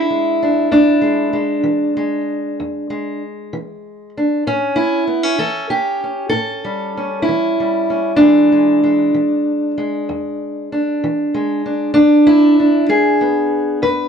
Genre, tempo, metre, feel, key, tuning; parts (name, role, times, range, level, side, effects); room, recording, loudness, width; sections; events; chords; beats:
acoustic country blues, solo or duo; 64 BPM (dotted quarters); 12/8; straight; E mixolydian; A4 = 441 Hz
fingerpicked steel-string acoustic guitar; solo; 0.0-14.1 s; E2 to B4; -14 LUFS; equal
light reverb; dark, warm production, nothing above 10.8 kHz; -13 LUFS; side -7 dB against mid
0.0-14.1 A section
0.0 E7; 4.5 A7; 8.2 E7
| 0.71 1.65 2.59 3.53 | 4.46 5.40 6.34 7.27 | 8.21 9.15 10.08 11.02 | 11.96 12.89 13.83